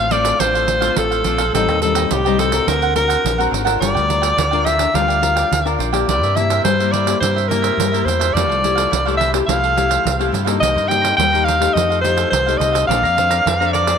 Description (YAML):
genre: samba and choro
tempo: 106 BPM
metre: 4/4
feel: straight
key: D minor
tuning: A4 = 440 Hz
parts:
  - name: bright alto saxophone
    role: melody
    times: 0.0-14.0 s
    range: G4 to G5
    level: -17 LUFS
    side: equal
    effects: none
  - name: cavaquinho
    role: accompaniment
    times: 0.0-14.0 s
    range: D4 to Bb5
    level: -24 LUFS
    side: right 12 dB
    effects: none
  - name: nylon-string guitar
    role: accompaniment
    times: 0.0-14.0 s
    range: A2 to C5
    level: -22 LUFS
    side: left 13 dB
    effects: none
  - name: deep dub fingered electric bass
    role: bass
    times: 0.0-13.9 s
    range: G1 to G2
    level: -22 LUFS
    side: equal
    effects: none
  - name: pandeiro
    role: percussion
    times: 0.1-14.0 s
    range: none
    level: -23 LUFS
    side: right 12 dB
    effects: none
room: moderate plate reverb, RT60 3.4 s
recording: 1960s-style stereo with parts hard left and right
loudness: -14 LUFS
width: side -7 dB against mid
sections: 0.0-14.0 A section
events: none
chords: 0.0 Dm7; 1.5 Am7b5; 2.7 D7alt; 3.8 Gm7; 6.1 C7; 8.3 Fmaj9; 10.6 Cm7; 11.8 F9; 12.9 Bbmaj9